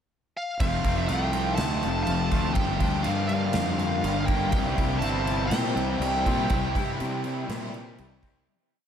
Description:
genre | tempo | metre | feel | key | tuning
rock, shoegaze and dream pop | 122 BPM | 4/4 | straight | unclear | A4 = 440 Hz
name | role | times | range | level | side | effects
bluesy overdriven lead guitar | melody | 0.4-7.9 s | F5 to A5 | -30 LUFS | equal | distortion, ping-pong delay
warbly tape-like pad | sustained chords | 1.1-8.4 s | F3 to F5 | -36 LUFS | equal | chorus, built-in reverb
twangy electric guitar | arpeggios | 0.6-8.5 s | F3 to E4 | -37 LUFS | left 6 dB | lush chorus, ping-pong delay
raw garage guitar | riff | 0.6-8.5 s | F2 to G4 | -33 LUFS | right 8 dB | overdrive, reverse reverb
thick fuzz guitar | riff | 0.6-8.5 s | F2 to C4 | -31 LUFS | left 8 dB | distortion, wide subtle chorus
fuzz fingered electric bass | bass | 0.6-8.5 s | F1 to C3 | -30 LUFS | equal | overdrive
gated 80s drum kit | drums | 0.6-8.3 s | crash cymbal, kick drum, snare drum | -30 LUFS | right 1 dB | none
sludgy distorted guitar | riff | 4.5-8.5 s | C3 to E4 | -36 LUFS | right 1 dB | none
room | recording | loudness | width
moderate huge ambient reverb, RT60 7.4 s | dreamy mix soaked in reverb | -23 LUFS | side -8 dB against mid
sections
0.0-0.6 pickup bar; 0.6-8.5 verse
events
fade-out 6.5-8.5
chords
0.0 N.C.; 0.6 F; 2.6 Gm7; 4.5 C

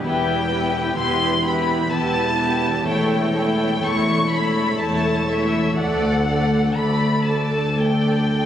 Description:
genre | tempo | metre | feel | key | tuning
classical, slow romantic movement for string orchestra | 54-65 BPM | 3/4 | rubato | unclear | A4 = 439 Hz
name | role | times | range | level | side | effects
dark chamber violin section | second line | 0.0-8.5 s | G4 to D5 | -26 LUFS | equal | none
warm chamber viola section | accompaniment | 0.0-8.5 s | A3 to A4 | -23 LUFS | right 1 dB | none
warm chamber cello section | bass | 0.0-8.5 s | D2 to E2 | -24 LUFS | equal | none
warm chamber double bass section | bass | 0.0-8.5 s | E1 to D2 | -27 LUFS | left 1 dB | none
warm chamber violin section | melody | 0.1-8.5 s | E5 to C#6 | -24 LUFS | left 3 dB | none
room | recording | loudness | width
wet scoring stage reverb, RT60 1.8 s | recorded on a phone in the room, club reverb | -18 LUFS | side -10 dB against mid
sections
0.0-8.5 A section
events
none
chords
0.1 Em; 2.9 A7/E; 5.8 D

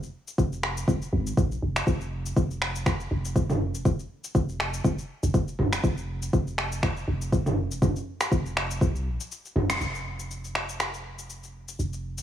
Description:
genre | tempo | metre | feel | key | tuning
afro house | 121 BPM | 4/4 | swing 55% on 16ths | F minor | A4 = 440 Hz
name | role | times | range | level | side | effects
warm 808-style bass | bass | 0.0-12.2 s | Eb1 to C2 | -31 LUFS | equal | sidechain pumping
deep house drum kit | drums | 0.0-12.2 s | cabasa, finger snaps, toms | -29 LUFS | equal | overdrive
electronic kick drum | drums | 0.4-8.9 s | none | -24 LUFS | equal | overdrive
room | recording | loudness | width
light reverb | none | -25 LUFS | side -10 dB against mid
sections
0.0-9.8 A section; 9.8-12.2 B section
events
kick drops out 9.3-9.8; band accent 9.7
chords
none

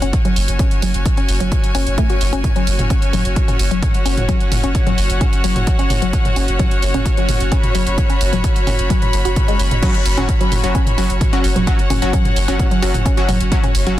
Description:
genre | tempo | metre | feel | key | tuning
driving peak-time techno | 130 BPM | 4/4 | straight | unclear | A4 = 439 Hz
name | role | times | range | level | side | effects
woody wave-folded pluck | riff | 0.0-14.0 s | F#3 to F#4 | -23 LUFS | left 1 dB | chorus, sidechain pumping, dub echo
saturated sub bass | bass | 0.0-14.0 s | F#1 | -19 LUFS | equal | overdrive, sidechain pumping, low-pass filter
techno drum kit | drums | 0.0-14.0 s | crash cymbal, hi-hat, toms | -24 LUFS | right 2 dB | sidechain pumping on hats, sidechain pumping on toms, sidechain pumping on cymbals
clear studio string section | texture | 0.0-14.0 s | C#4 to B5 | -23 LUFS | left 1 dB | sidechain pumping
electronic kick drum | drums | 0.1-13.6 s | none | -17 LUFS | equal | none
supersaw stab | stabs | 9.8-14.0 s | F#3 to F#4 | -22 LUFS | left 2 dB | sidechain pumping, ping-pong delay
room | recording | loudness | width
digital ambience | dense, heavily limited modern master | -14 LUFS | side -14 dB against mid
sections
0.0-14.0 A section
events
filter sweep on synth arpeggio sound 0.0-14.0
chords
0.0 F#5

